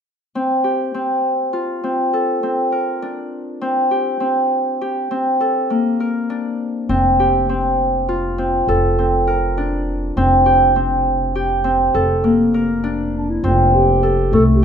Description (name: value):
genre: contemporary instrumental, chamber music in an uneven meter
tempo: 202 BPM (eighths)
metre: 11/8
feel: straight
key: F major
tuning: A4 = 441 Hz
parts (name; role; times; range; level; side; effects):
- Celtic harp; arpeggios; 0.4-14.6 s; A3 to Bb4; -16 LUFS; equal; none
- upright bass; bass; 6.9-14.6 s; F1 to C2; -20 LUFS; equal; none
- dark clarinet; melody; 13.2-14.6 s; D4 to A4; -19 LUFS; equal; none
room: wet recital hall reverb, RT60 1.3 s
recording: minimal, uncompressed stereo recording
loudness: -15 LUFS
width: side -7 dB against mid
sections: 0.3-13.4 A section; 13.4-14.6 B section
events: none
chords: 0.3 Fsus2; 2.1 Bbmaj9; 3.6 C5; 5.4 Bbmaj7; 6.9 Fsus2; 8.7 Bbmaj9/F; 10.2 C5/F; 12.0 F6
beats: | 0.35 0.65 0.94 1.24 1.54 1.84 2.13 2.43 2.73 3.03 3.33 | 3.62 3.92 4.22 4.52 4.81 5.11 5.41 5.71 6.00 6.30 6.60 | 6.90 7.20 7.49 7.79 8.09 8.38 8.68 8.98 9.28 9.57 9.87 | 10.17 10.47 10.76 11.06 11.36 11.66 11.95 12.25 12.55 12.84 13.14 | 13.44 13.74 14.03 14.33 14.63